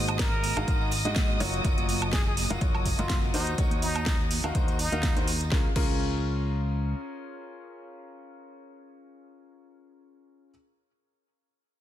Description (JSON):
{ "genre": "piano house", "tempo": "124 BPM", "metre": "4/4", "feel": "swing 55% on 16ths", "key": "Db major", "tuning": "A4 = 439 Hz", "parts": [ { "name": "dark studio violin section", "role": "sustained chords", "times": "0.0-5.5 s", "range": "Eb5 to Eb6", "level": "-36 LUFS", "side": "right 1 dB", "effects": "sidechain pumping" }, { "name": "clear grand piano", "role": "riff", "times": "0.0-10.5 s", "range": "Eb3 to F5", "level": "-34 LUFS", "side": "left 2 dB", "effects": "sidechain pumping, dub echo" }, { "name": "fingered electric bass", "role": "bass", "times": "0.0-6.9 s", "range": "Gb1 to Ab2", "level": "-31 LUFS", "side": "equal", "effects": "sidechain pumping" }, { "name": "garage drum kit", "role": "drums", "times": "0.1-5.9 s", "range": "crash cymbal, hi-hat, snare drum, woodblock", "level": "-33 LUFS", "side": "right 1 dB", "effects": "small room ambience" }, { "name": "tambourine and congas", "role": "percussion", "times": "0.1-5.5 s", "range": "none", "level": "-39 LUFS", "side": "right 6 dB", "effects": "none" }, { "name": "trumpet with plunger mute", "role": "melody", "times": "0.2-5.2 s", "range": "Eb4 to Bb4", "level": "-36 LUFS", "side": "equal", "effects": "dub echo" }, { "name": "electronic kick drum", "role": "drums", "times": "0.2-5.9 s", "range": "none", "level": "-28 LUFS", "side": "equal", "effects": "small room ambience" } ], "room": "light reverb", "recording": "dense, heavily limited modern master", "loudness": "-24 LUFS", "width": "side -12 dB against mid", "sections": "0.0-5.5 A section; 5.5-9.4 B section", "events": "drop 0.0-5.5", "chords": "0.0 Ab7; 1.4 Gbmaj7; 3.3 Ebm7; 5.5 Db6" }